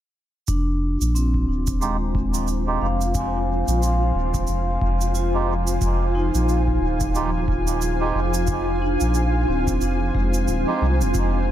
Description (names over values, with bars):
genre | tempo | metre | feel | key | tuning
ambient dub | 90 BPM | 4/4 | swing 58% on 16ths | F dorian | A4 = 440 Hz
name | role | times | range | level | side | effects
granular cloud pad | sustained chords | 1.0-11.5 s | F4 to Ab5 | -26 LUFS | equal | built-in reverb
vibraphone with soft mallets | arpeggios | 0.5-11.5 s | Ab3 to C6 | -26 LUFS | left 1 dB | dub echo
soft dub sub bass | bass | 0.5-11.5 s | Eb1 to C2 | -22 LUFS | equal | tube saturation
cabasa | drums | 0.5-11.3 s | none | -33 LUFS | right 7 dB | none
electronic kick drum | drums | 0.5-11.3 s | none | -27 LUFS | equal | overdrive
melodica | stabs | 1.8-10.9 s | Ab3 to G4 | -30 LUFS | right 5 dB | low-pass filter, dub echo
room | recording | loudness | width
light reverb, small room ambience | none | -19 LUFS | side -12 dB against mid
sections
0.5-11.5 A section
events
filter sweep on melodica 0.5-11.5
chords
0.5 Fm7